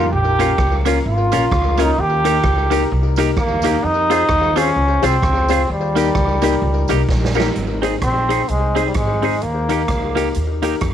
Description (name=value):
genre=ska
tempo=129 BPM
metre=4/4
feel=swing 59% on 8ths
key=Ab major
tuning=A4 = 440 Hz
part: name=brilliant trombone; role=melody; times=0.0-10.4 s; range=G3 to G4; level=-19 LUFS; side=right 1 dB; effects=none
part: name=clean electric guitar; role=accompaniment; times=0.0-10.8 s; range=Bb3 to Ab4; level=-24 LUFS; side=right 10 dB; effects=none
part: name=dark upright piano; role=stabs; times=0.0-10.7 s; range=Db4 to C5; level=-22 LUFS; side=left 8 dB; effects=tape echo
part: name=upright bass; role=bass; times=0.0-10.9 s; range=Ab1 to F2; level=-20 LUFS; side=equal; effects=none
part: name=swinging big-band drum kit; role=drums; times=0.4-10.9 s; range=hi-hat, kick drum, rim click, snare drum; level=-24 LUFS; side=right 2 dB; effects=none
part: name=tambourine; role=percussion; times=0.4-7.4 s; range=none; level=-39 LUFS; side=right 9 dB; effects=tape echo
room=light reverb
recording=1960s-style stereo with parts hard left and right, vinyl crackle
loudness=-14 LUFS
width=side -10 dB against mid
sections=0.0-7.5 A section; 7.5-10.9 B section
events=drum fill 7.1-7.5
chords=0.1 Bbm; 2.0 Eb; 3.8 Fm; 5.7 Eb; 7.5 Ab; 9.4 Eb